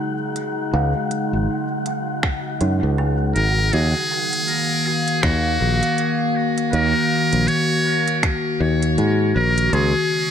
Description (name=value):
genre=ambient dub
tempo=80 BPM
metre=4/4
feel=swing 59% on 16ths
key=Eb minor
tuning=A4 = 445 Hz
part: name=warbly tape-like pad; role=sustained chords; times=0.0-10.3 s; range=Db3 to F5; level=-22 LUFS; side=left 1 dB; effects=chorus, built-in reverb
part: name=kalimba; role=arpeggios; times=0.0-6.7 s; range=Eb4 to Gb5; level=-30 LUFS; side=right 4 dB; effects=vintage 12-bit sampler grit, dub echo
part: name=wind-like tuned noise texture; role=texture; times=0.0-3.8 s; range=Gb3 to Gb5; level=-30 LUFS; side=left 1 dB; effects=built-in reverb
part: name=organic electronic drum kit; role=drums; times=0.4-9.9 s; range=finger snaps, hi-hat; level=-26 LUFS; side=right 1 dB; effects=small room ambience, dub echo
part: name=fingered electric bass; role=bass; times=0.7-9.9 s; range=Ab1 to Ab2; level=-19 LUFS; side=equal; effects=none
part: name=electronic kick drum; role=drums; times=2.2-8.4 s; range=none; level=-21 LUFS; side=equal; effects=small room ambience
part: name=trumpet with metal mute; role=melody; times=3.4-10.3 s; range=Gb4 to Db5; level=-21 LUFS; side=equal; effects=dub echo
room=moderate scoring stage reverb, RT60 1.8 s, digital ambience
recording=none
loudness=-17 LUFS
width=side -8 dB against mid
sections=0.0-3.7 A section; 3.7-10.3 B section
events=none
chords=0.0 Dbsus4; 3.7 Ebm; 9.7 Dbsus4